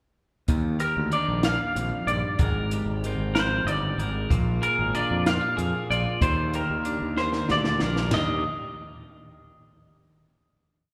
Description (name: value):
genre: math rock and midwest emo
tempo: 63 BPM (dotted quarters)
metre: 6/8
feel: straight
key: Eb major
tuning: A4 = 442 Hz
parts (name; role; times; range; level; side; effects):
- twelve-string electric guitar; accompaniment; 0.5-8.4 s; Eb2 to Bb4; -33 LUFS; equal; none
- growling fingered electric bass; bass; 0.5-8.4 s; G1 to F2; -31 LUFS; equal; overdrive
- compact cocktail drum kit; drums; 0.5-8.3 s; hi-hat, kick drum, ride cymbal, snare drum, toms; -30 LUFS; equal; none
- twelve-string electric guitar; arpeggios; 0.8-8.4 s; Bb4 to F5; -29 LUFS; equal; spring reverb
room: moderate church reverb, RT60 2.7 s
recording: recorded in a church or concert hall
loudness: -25 LUFS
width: mono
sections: 0.5-8.1 A section; 8.1-10.1 final chord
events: drum fill 7.2-8.1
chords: 0.5 Ebmaj9; 2.4 Abmaj9#11; 4.3 Bb7; 6.2 Ebmaj7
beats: | 0.49 1.44 | 2.40 3.35 | 4.31 5.26 | 6.22 7.18 | 8.13